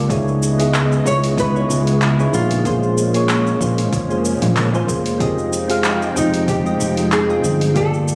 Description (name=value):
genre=sunset chillout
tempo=94 BPM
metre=4/4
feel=swing 54% on 16ths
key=unclear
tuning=A4 = 440 Hz
part: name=soft electric-piano-like synth keys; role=accompaniment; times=0.0-8.2 s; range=Ab3 to G5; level=-24 LUFS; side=equal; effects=chorus, tape echo
part: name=soft string machine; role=sustained chords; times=0.0-8.2 s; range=Db3 to G5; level=-26 LUFS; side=equal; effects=ensemble chorus
part: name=sustaining fretless electric bass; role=bass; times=0.0-8.2 s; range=F1 to Db2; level=-22 LUFS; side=equal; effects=tube saturation
part: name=deep house drum kit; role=drums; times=0.1-8.2 s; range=handclaps, hi-hat, shaker, toms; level=-27 LUFS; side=equal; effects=overdrive, studio ambience
part: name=electronic kick drum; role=drums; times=0.1-7.9 s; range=none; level=-29 LUFS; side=equal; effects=overdrive, studio ambience
part: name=nylon-string guitar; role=melody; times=1.1-8.2 s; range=Eb4 to Db5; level=-24 LUFS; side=equal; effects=tape echo
room=moderate lush hall reverb, RT60 2.5 s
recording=recorded on a phone in the room, studio reverb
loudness=-17 LUFS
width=mono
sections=0.0-8.2 A section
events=none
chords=0.1 Dbm9; 2.7 Bbm9; 5.2 Fm9